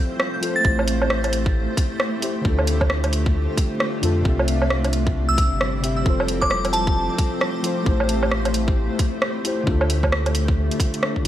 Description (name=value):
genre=future garage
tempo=133 BPM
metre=4/4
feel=swing 61% on 16ths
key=A minor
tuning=A4 = 439 Hz
part: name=muted felt-like synth keys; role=accompaniment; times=0.0-11.3 s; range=C3 to E5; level=-27 LUFS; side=left 2 dB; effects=chorus, vintage 12-bit sampler grit, sidechain pumping, analog delay
part: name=granular cloud pad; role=sustained chords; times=0.0-11.3 s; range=G3 to F5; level=-28 LUFS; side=equal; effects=built-in reverb, sidechain pumping
part: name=garage drum kit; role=drums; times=0.2-11.3 s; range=hi-hat, rim click, woodblock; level=-24 LUFS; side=right 1 dB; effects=overdrive, studio reverb
part: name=glassy synth bell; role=melody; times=0.6-0.7, 5.3-7.2 s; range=A5 to A6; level=-27 LUFS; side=equal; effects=chorus, tape echo
part: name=soft dub sub bass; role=bass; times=0.6-11.3 s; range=F1 to F2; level=-23 LUFS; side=equal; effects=sidechain pumping
part: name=electronic kick drum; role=drums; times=0.6-11.2 s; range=none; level=-20 LUFS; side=equal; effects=overdrive, studio reverb
room=light reverb, digital ambience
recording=vinyl crackle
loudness=-18 LUFS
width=side -12 dB against mid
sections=0.0-11.3 A section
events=none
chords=0.0 F; 0.6 Am7; 2.5 Dm; 4.3 C; 6.1 F; 7.9 Am7; 9.7 Dm